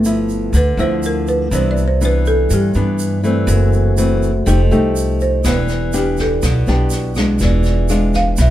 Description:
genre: bossa nova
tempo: 122 BPM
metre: 4/4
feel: straight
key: unclear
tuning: A4 = 440 Hz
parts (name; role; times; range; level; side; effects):
- nylon-string guitar; accompaniment; 0.0-8.5 s; F#2 to G4; -19 LUFS; left 2 dB; none
- vibraphone with medium mallets; accompaniment; 0.0-8.5 s; E4 to E5; -26 LUFS; right 2 dB; none
- upright bass; bass; 0.0-8.5 s; E1 to G2; -16 LUFS; equal; none
- tube shaker; percussion; 0.0-8.5 s; none; -31 LUFS; right 5 dB; none
- folk marimba with medium mallets; melody; 0.6-8.5 s; G4 to F5; -20 LUFS; right 1 dB; none
- jazz brush drum kit; drums; 5.4-8.5 s; kick drum, rim click, snare drum; -23 LUFS; equal; none
room: light reverb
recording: band playing live in one room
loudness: -13 LUFS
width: side -13 dB against mid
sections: 0.0-8.5 A section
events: marimba solo 0.0-8.5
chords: 0.0 G13; 1.5 Cmaj9; 3.5 F#m7b5; 4.5 F9; 5.4 Em7; 7.4 E7b9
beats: 0.05 0.54 1.03 | 1.52 2.01 2.50 2.99 | 3.48 3.97 4.46 4.95 | 5.44 5.93 6.42 6.91 | 7.41 7.89 8.38

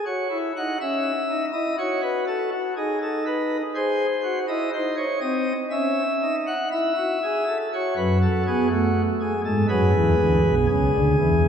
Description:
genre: classical, baroque-style 3-part fugue for pipe organ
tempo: 61 BPM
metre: 4/4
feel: straight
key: unclear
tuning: A4 = 439 Hz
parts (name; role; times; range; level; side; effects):
- pipe organ, sparkling flutes; solo; 0.0-11.5 s; B1 to F#5; -20 LUFS; equal; none
room: wet church reverb, RT60 3.2 s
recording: heard from further back in the room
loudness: -20 LUFS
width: side -8 dB against mid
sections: 0.0-11.5 A section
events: none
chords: 0.0 C#m; 1.8 D#m7b5/F#; 3.8 G#7; 5.7 C#m; 7.7 F#m; 9.7 G#m7b5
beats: 0.81 1.80 2.78 | 3.76 4.74 5.73 6.72 | 7.71 8.70 9.69 10.69

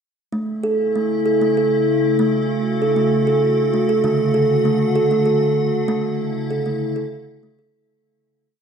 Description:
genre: world meditative, meditative tuned percussion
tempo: 65 BPM (dotted quarters)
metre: 6/8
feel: straight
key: A major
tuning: A4 = 435 Hz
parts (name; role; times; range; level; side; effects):
- icy glass pad; sustained chords; 0.8-7.7 s; C#3 to F#4; -21 LUFS; left 3 dB; chorus, built-in reverb
- kalimba; arpeggios; 0.3-7.7 s; D3 to A4; -18 LUFS; right 2 dB; none
room: wet concert hall reverb, RT60 2.2 s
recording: none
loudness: -16 LUFS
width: side -6 dB against mid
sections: 0.3-7.7 A section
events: fade-out 5.9-7.7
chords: 0.3 A; 4.0 D; 5.9 A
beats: | 0.33 1.25 | 2.18 3.11 | 4.03 4.96 | 5.89 6.81

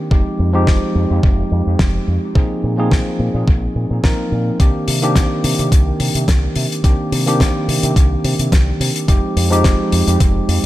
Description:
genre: nu-disco, nu disco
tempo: 107 BPM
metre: 4/4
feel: swing 54% on 16ths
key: C minor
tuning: A4 = 439 Hz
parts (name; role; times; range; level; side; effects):
- tine electric piano; accompaniment; 0.0-10.7 s; Eb3 to Bb4; -19 LUFS; equal; dub echo
- fingered electric bass with an envelope filter; bass; 0.1-10.7 s; F1 to C3; -18 LUFS; equal; none
- electronic kick drum; drums; 0.1-10.3 s; none; -14 LUFS; equal; studio ambience
- damped 70s drum kit; drums; 0.7-10.7 s; hi-hat, snare drum; -23 LUFS; left 2 dB; studio ambience, dub echo
room: light reverb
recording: echo-heavy mix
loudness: -13 LUFS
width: side -15 dB against mid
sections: 0.0-10.7 A section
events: none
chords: 0.1 Fm9; 2.4 Bb7sus4; 4.6 Cm9; 9.1 Fm9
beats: | 0.11 0.68 1.24 1.80 | 2.36 2.92 3.48 4.04 | 4.60 5.16 5.72 6.28 | 6.84 7.40 7.96 8.53 | 9.09 9.65 10.21

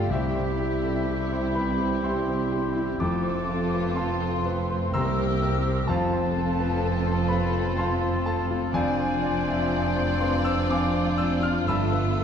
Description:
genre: classical, romantic movement for piano and orchestra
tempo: 62 BPM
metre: 3/4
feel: rubato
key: unclear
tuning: A4 = 440 Hz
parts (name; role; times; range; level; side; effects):
- clear concert grand piano; melody; 0.0-12.2 s; C2 to F6; -28 LUFS; left 2 dB; none
- warm symphonic violin section; melody; 0.0-12.2 s; G4 to D5; -37 LUFS; left 7 dB; none
- flute section; second line; 0.0-12.2 s; E5 to F6; -34 LUFS; left 2 dB; none
- warm clarinet; second line; 0.0-12.2 s; E4 to G4; -35 LUFS; left 1 dB; none
- warm oboe; second line; 0.0-12.2 s; G4 to C5; -38 LUFS; right 1 dB; none
- warm studio violin section; second line; 0.0-12.2 s; E4 to G4; -36 LUFS; left 3 dB; none
- dark bassoon; accompaniment; 0.0-12.2 s; G3 to D4; -36 LUFS; right 1 dB; none
- dark symphonic viola section; accompaniment; 0.0-12.2 s; B3 to C4; -34 LUFS; right 2 dB; none
- dark French horn section; sustained chords; 0.0-12.2 s; G3 to G4; -32 LUFS; left 4 dB; none
- rich symphonic cello section; bass; 0.0-12.2 s; C2 to C3; -32 LUFS; right 4 dB; none
- rich symphonic double bass section; bass; 0.0-12.2 s; F1 to C2; -31 LUFS; right 3 dB; none
room: wet concert hall reverb, RT60 2.4 s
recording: dark, warm production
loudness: -23 LUFS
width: side -8 dB against mid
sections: 0.0-12.2 A section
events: none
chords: 0.1 C; 3.0 F; 4.9 C7; 5.9 F; 8.7 Dm7b5/F; 11.7 G13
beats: | 0.10 1.08 2.03 | 3.00 3.97 4.93 | 5.89 6.83 7.78 | 8.75 9.72 10.69 | 11.68

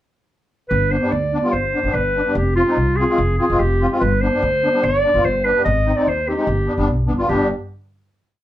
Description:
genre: klezmer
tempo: 146 BPM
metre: 4/4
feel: straight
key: G phrygian dominant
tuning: A4 = 440 Hz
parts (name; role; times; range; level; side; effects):
- clear clarinet; melody; 0.7-7.5 s; F4 to Eb5; -19 LUFS; equal; none
- upright bass; bass; 0.7-7.5 s; F1 to Eb2; -21 LUFS; equal; none
- musette accordion; accompaniment; 0.9-7.5 s; G3 to F4; -21 LUFS; left 1 dB; none
room: wet studio ambience, RT60 0.5 s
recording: band playing live in one room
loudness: -16 LUFS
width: side -13 dB against mid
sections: 0.7-7.3 A section; 7.3-8.4 final chord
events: none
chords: 0.7 G; 2.4 Fm; 4.0 G; 5.7 Ab; 6.5 G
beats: | 0.70 1.12 1.53 1.95 | 2.36 2.78 3.19 3.61 | 4.02 4.43 4.85 5.26 | 5.67 6.08 6.48 6.89 | 7.30

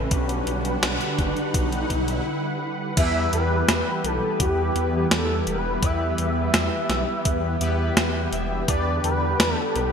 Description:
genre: synthwave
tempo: 84 BPM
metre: 4/4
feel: straight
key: E minor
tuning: A4 = 440 Hz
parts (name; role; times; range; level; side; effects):
- analog string pad; sustained chords; 0.0-9.9 s; D3 to F#5; -29 LUFS; right 1 dB; ensemble chorus, sidechain pumping
- analog synth brass; stabs; 0.0-9.9 s; B3 to E5; -30 LUFS; left 2 dB; chorus, cassette tape, digital delay
- wide detuned saw bass; bass; 0.0-9.9 s; E1 to E2; -26 LUFS; equal; chorus
- riser; sound effects; 0.0-2.3 s; none; -30 LUFS; equal; none
- electronic kick drum; drums; 0.1-8.8 s; none; -24 LUFS; equal; none
- gated 80s digital drum machine; drums; 0.1-9.9 s; crash cymbal, hi-hat, snare drum; -25 LUFS; equal; gated reverb, gated reverb snare, high-pass filter on hats, high-pass filter on snare, high-pass filter on cymbals, high-pass filter on room
- expressive synth lead; melody; 3.0-9.9 s; G4 to E5; -26 LUFS; equal; ensemble chorus, cassette tape, ping-pong delay
room: moderate lush hall reverb, RT60 2.6 s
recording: bright 1980s-style digital production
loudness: -21 LUFS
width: side -6 dB against mid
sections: 0.0-3.0 A section; 3.0-9.9 B section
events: riser 0.0-2.3; filter sweep on analog synth pad 0.0-3.0; break 2.3-3.0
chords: 0.1 Gmaj7; 3.0 Em; 8.7 G/E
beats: | 0.11 0.83 1.54 2.26 | 2.97 3.69 4.40 5.11 | 5.83 6.54 7.26 7.97 | 8.69 9.40

